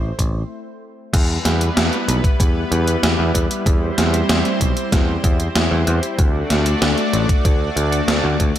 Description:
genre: synthwave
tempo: 95 BPM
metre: 4/4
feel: straight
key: E minor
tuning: A4 = 441 Hz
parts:
  - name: lush unison pad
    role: sustained chords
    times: 0.0-8.6 s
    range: G3 to D5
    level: -23 LUFS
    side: equal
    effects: chorus, sidechain pumping
  - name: picked electric bass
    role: bass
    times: 0.0-8.5 s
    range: A1 to E2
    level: -19 LUFS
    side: equal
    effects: sidechain pumping
  - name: electronic kick drum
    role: drums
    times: 0.2-8.5 s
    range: none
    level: -17 LUFS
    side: equal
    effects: none
  - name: gated 80s digital drum machine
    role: drums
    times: 0.2-8.6 s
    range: crash cymbal, hi-hat, snare drum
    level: -21 LUFS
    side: equal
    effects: gated reverb, gated reverb snare, slapback echo
room: moderate lush hall reverb, RT60 1.6 s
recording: big arena sound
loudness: -15 LUFS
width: side -11 dB against mid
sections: 0.0-1.1 A section; 1.1-8.6 B section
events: stop 0.5-1.1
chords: 0.0 Am; 1.1 Em; 3.7 C; 6.2 D

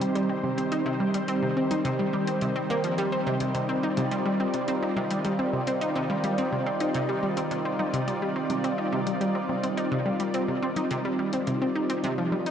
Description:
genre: ambient, sequencer-driven space music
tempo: 106 BPM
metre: 4/4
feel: straight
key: C minor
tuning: A4 = 441 Hz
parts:
  - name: lush unison pad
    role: sustained chords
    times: 0.0-12.5 s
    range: Eb3 to D5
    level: -28 LUFS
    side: right 1 dB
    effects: chorus, phaser, shimmer reverb
  - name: analog pluck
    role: riff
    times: 0.0-12.5 s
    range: C3 to Eb4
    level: -28 LUFS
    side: equal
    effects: chorus, analog delay, shimmer reverb
  - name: electronic hi-hat and congas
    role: percussion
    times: 0.0-12.5 s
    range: none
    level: -38 LUFS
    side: left 3 dB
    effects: analog delay
  - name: bubbling stepped-filter texture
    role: texture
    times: 0.1-12.5 s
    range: Eb4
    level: -39 LUFS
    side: equal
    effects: none
room: wet lush hall reverb, RT60 2.4 s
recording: cassette tape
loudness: -24 LUFS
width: side -8 dB against mid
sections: 0.0-12.5 A section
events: none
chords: 0.0 Cm

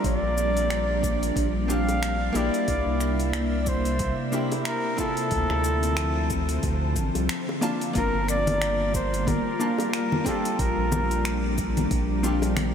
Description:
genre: sunset chillout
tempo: 91 BPM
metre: 4/4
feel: swing 58% on 16ths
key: G dorian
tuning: A4 = 440 Hz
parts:
  - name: warm flugelhorn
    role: melody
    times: 0.0-11.6 s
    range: A4 to F5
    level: -28 LUFS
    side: equal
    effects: tape echo
  - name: hollow-body jazz guitar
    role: accompaniment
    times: 0.0-12.7 s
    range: Bb3 to A5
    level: -31 LUFS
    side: equal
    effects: auto-pan, analog delay
  - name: ethereal airy pad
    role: sustained chords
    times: 0.0-12.7 s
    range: C3 to E5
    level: -29 LUFS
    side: equal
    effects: ensemble chorus, built-in reverb
  - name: round analog bass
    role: bass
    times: 0.0-12.7 s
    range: G1 to D2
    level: -27 LUFS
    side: equal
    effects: tube saturation
  - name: electronic kick drum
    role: drums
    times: 0.0-12.1 s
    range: none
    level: -31 LUFS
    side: equal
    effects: none
  - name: smooth R&B drum kit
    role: drums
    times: 0.0-12.7 s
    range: congas, finger snaps, hi-hat, shaker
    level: -33 LUFS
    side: left 2 dB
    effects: none
  - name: bongos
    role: percussion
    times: 1.9-12.5 s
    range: none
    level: -40 LUFS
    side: left 4 dB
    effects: none
room: wet huge ambient reverb, RT60 7.2 s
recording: dreamy mix soaked in reverb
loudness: -22 LUFS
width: side -8 dB against mid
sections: 0.0-8.0 A section; 8.0-12.7 B section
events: none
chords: 0.0 Bb6; 2.7 C7; 5.3 Dm7; 8.0 Gm7; 10.6 Bb6

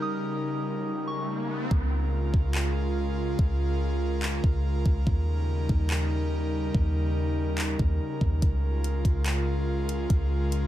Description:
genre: hip hop, atmospheric cloud-rap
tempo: 143 BPM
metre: 4/4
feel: half-time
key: Db lydian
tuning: A4 = 440 Hz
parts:
  - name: soft synth bell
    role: melody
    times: 0.0-1.3 s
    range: Db6 to Eb6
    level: -36 LUFS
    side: right 2 dB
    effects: chorus, low-pass filter, tape echo
  - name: airy breathy pad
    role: sustained chords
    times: 0.0-10.7 s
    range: Db3 to Bb4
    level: -30 LUFS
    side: equal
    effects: chorus, sidechain pumping
  - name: riser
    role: sound effects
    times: 0.7-1.7 s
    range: none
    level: -37 LUFS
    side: equal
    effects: none
  - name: clean 808-style bass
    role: bass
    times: 1.7-10.7 s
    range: Db2 to Eb2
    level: -26 LUFS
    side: equal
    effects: none
  - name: smooth R&B drum kit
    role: drums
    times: 1.7-10.6 s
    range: handclaps, hi-hat, kick drum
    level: -28 LUFS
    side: equal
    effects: none
room: digital ambience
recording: echo-heavy mix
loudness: -24 LUFS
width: side -13 dB against mid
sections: 0.0-1.7 A section; 1.7-10.7 B section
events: filter sweep 0.0-1.7; riser 0.7-1.7; hi-hats muted 1.7-8.4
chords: 0.0 Eb7; 1.7 Db6; 5.1 Eb7; 8.4 Db6

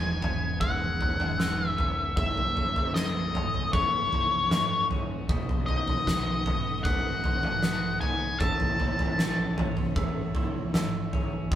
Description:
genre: post-rock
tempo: 77 BPM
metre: 4/4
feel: straight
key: unclear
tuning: A4 = 442 Hz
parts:
  - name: octave-fuzz lead guitar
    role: melody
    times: 0.0-9.9 s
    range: C#5 to A5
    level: -28 LUFS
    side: left 2 dB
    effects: distortion
  - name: clear studio string section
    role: sustained chords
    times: 0.0-11.6 s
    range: D#3 to E5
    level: -44 LUFS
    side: left 1 dB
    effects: none
  - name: glockenspiel with rubber mallets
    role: arpeggios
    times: 0.0-11.6 s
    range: D#6 to A6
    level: -42 LUFS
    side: right 2 dB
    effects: analog delay
  - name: twelve-string electric guitar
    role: arpeggios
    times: 0.0-11.6 s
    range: E2 to C#4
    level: -37 LUFS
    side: left 2 dB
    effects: none
  - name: growling picked electric bass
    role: bass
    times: 0.0-11.6 s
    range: E1 to B1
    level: -35 LUFS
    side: equal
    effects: overdrive
  - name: oversized low-tuned drum kit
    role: drums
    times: 0.2-11.6 s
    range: kick drum, snare drum, toms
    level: -28 LUFS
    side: right 1 dB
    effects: none
room: moderate stone room reverb, RT60 1.1 s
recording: band playing live in one room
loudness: -25 LUFS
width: side -11 dB against mid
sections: 0.0-11.6 A section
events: none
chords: 0.0 Emaj7; 2.2 F#m7; 5.3 B7; 8.4 A6

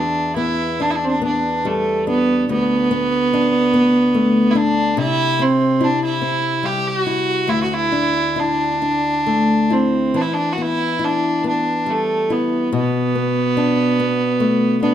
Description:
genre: celtic folk, Celtic slow air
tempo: 66-74 BPM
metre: 3/4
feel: rubato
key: E minor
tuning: A4 = 440 Hz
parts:
  - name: bright fiddle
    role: melody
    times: 0.0-14.9 s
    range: A3 to G4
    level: -17 LUFS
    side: right 2 dB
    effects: none
  - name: nylon-string guitar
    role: accompaniment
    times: 0.0-14.9 s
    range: D2 to E4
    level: -20 LUFS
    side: left 4 dB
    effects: none
room: light reverb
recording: close, detailed microphones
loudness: -16 LUFS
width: side -10 dB against mid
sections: 0.0-14.9 A section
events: none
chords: 0.0 Em7; 2.5 D5; 5.0 C; 7.5 Dsus2; 10.1 Em; 12.7 Bm7

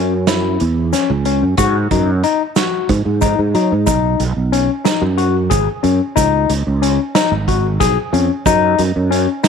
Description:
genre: progressive instrumental, band music in an uneven meter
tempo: 183 BPM (eighths)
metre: 7/8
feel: straight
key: unclear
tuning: A4 = 439 Hz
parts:
  - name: overdriven tine electric piano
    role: arpeggios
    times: 0.0-9.5 s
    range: C#4 to G#4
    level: -17 LUFS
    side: left 10 dB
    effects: none
  - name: sustaining fretless electric bass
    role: bass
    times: 0.0-9.3 s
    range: G#1 to F#3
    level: -16 LUFS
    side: right 2 dB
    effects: analog chorus
  - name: vintage drum kit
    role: drums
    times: 0.3-9.5 s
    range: hi-hat, kick drum, snare drum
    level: -20 LUFS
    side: right 6 dB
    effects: none
  - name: egg shaker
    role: percussion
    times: 0.3-9.5 s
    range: none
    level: -27 LUFS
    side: right 21 dB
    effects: none
room: moderate spring reverb, RT60 1.7 s, studio reverb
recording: 1960s-style stereo with parts hard left and right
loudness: -13 LUFS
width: side -6 dB against mid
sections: 0.0-3.9 A section; 3.9-9.5 B section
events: none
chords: 0.0 F#5; 1.6 G#5; 3.9 B6; 6.2 C#sus2; 8.5 F#5

